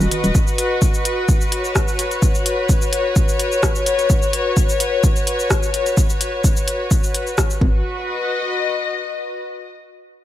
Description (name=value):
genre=minimal techno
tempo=128 BPM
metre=4/4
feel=swing 53% on 16ths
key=G# minor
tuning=A4 = 436 Hz
part: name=hollow knocking FM bass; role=bass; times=0.0-0.3, 7.6-7.8 s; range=D#1 to G#1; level=-18 LUFS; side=equal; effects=sidechain pumping
part: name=minimal click drum kit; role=drums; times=0.0-7.6 s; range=cabasa, hi-hat, rim click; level=-23 LUFS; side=left 1 dB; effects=none
part: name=warm studio string section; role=texture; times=0.0-9.7 s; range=F#4 to D#5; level=-21 LUFS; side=left 2 dB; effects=sidechain pumping
part: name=electronic kick drum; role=drums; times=0.3-7.7 s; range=none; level=-18 LUFS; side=equal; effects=none
room=light reverb, digital ambience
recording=none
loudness=-16 LUFS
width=side -13 dB against mid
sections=0.0-7.8 A section; 7.8-9.7 B section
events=none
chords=0.0 G#m (rootless); 7.8 B/F#